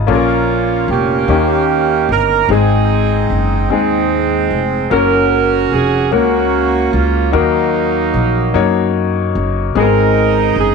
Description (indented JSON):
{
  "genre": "slow gospel",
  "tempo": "50 BPM (dotted quarters)",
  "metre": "6/8",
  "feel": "straight",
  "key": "unclear",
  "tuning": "A4 = 440 Hz",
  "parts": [
    { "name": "clear baby grand piano", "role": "accompaniment", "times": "0.0-10.7 s", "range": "Ab2 to Db5", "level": "-16 LUFS", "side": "left 13 dB", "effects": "none" },
    { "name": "upright bass", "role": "bass", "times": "0.0-10.7 s", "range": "F1 to Gb2", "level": "-18 LUFS", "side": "equal", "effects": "none" },
    { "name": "bright saxophone section", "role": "melody", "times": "0.1-10.7 s", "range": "Gb3 to Bb4", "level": "-15 LUFS", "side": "right 12 dB", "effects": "none" }
  ],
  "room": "light reverb, small room ambience",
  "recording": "1960s-style stereo with parts hard left and right, nothing above 10.7 kHz",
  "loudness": "-12 LUFS",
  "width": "side -5 dB against mid",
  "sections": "0.0-10.7 A section",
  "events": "none",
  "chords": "0.1 Bbm; 1.3 Eb7; 2.5 Ab; 4.9 Gb; 7.3 Ebm; 9.8 Ab"
}